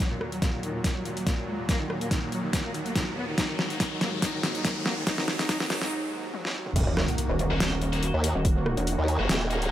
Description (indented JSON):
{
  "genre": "heavy wobble dubstep",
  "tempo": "142 BPM",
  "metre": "4/4",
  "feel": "swing 54% on 16ths, half-time",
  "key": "Eb phrygian",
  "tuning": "A4 = 440 Hz",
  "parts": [
    { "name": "warm cello", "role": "melody", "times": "0.0-5.9 s", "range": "Bb2 to Eb4", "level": "-34 LUFS", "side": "left 1 dB", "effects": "digital delay" },
    { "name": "supersaw chords", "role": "sustained chords", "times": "0.0-9.7 s", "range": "Eb2 to Gb4", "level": "-34 LUFS", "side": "right 1 dB", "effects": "sidechain pumping, low-pass filter" },
    { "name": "dubstep drum kit", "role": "drums", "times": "0.0-9.7 s", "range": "crash cymbal, hi-hat, rim click, snare drum, toms", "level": "-29 LUFS", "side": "equal", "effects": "overdrive" },
    { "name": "electronic kick drum", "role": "drums", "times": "0.0-8.5 s", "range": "none", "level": "-28 LUFS", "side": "equal", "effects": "overdrive" },
    { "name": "riser and impact", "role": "sound effects", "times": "0.3-8.4 s", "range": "none", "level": "-35 LUFS", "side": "equal", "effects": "none" },
    { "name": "formant-sweep wobble bass", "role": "bass", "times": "6.8-9.7 s", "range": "Eb1 to Eb2", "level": "-26 LUFS", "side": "equal", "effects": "chorus, overdrive" },
    { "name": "pulsing pluck wobble bass", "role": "bass", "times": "6.9-9.0 s", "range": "Eb1 to Fb1", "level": "-27 LUFS", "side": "equal", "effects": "chorus, overdrive" },
    { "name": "heavy high-gain guitar", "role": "stabs", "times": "7.5-9.7 s", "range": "Bb3 to Gb4", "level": "-34 LUFS", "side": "left 2 dB", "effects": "distortion, digital delay" }
  ],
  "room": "light reverb",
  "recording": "high-pass filter",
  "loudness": "-25 LUFS",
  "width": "side -12 dB against mid",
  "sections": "0.0-6.8 A section; 6.8-9.7 B section",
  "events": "build-up 0.0-6.8; drum fill 0.0-5.9, 6.3-6.8; filter sweep 0.0-6.8; riser 0.3-5.9; break 5.9-6.8; drop 6.8-9.7; impact 6.8-8.4",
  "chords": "0.0 Ebm"
}